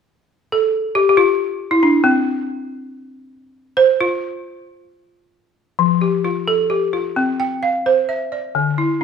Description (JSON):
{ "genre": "west african traditional", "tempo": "free time", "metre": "none", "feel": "none", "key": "F major", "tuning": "A4 = 440 Hz", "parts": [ { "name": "balafon", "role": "arpeggios", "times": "0.5-9.0 s", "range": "D3 to G5", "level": "-15 LUFS", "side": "equal", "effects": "none" } ], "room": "moderate recital hall reverb, RT60 1.4 s", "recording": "minimal, uncompressed stereo recording", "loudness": "-15 LUFS", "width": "side -6 dB against mid", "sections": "0.3-5.8 A section; 5.8-9.0 B section", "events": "balafon solo 0.3-5.8", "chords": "0.3 N.C.; 5.8 F; 7.2 C", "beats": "free time" }